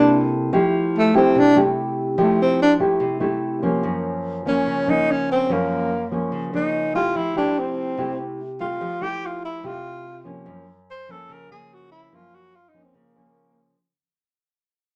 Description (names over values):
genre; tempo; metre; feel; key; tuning
bossa nova; 145 BPM; 4/4; straight; F major; A4 = 440 Hz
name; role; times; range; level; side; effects
breathy tenor saxophone; melody; 0.0-13.7 s; A3 to C5; -22 LUFS; equal; none
nylon-string guitar; accompaniment; 0.0-13.8 s; Gb2 to A4; -24 LUFS; equal; none
room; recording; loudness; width
wet small room reverb, RT60 0.5 s; none; -21 LUFS; mono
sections
0.5-13.8 A section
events
fade-out 0.5-13.8; tenor saxophone solo 0.5-13.8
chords
0.0 C13; 0.5 Fmaj9; 3.8 Gbmaj7; 7.1 Fmaj9; 10.5 Gbmaj7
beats
0.11 | 0.52 0.93 1.35 1.76 | 2.17 2.59 3.00 3.42 | 3.83 4.24 4.66 5.07 | 5.49 5.90 6.31 6.73 | 7.14 7.56 7.97 8.38 | 8.80 9.21 9.63 10.04 | 10.46 10.87 11.28 11.70 | 12.11 12.53 12.94 13.36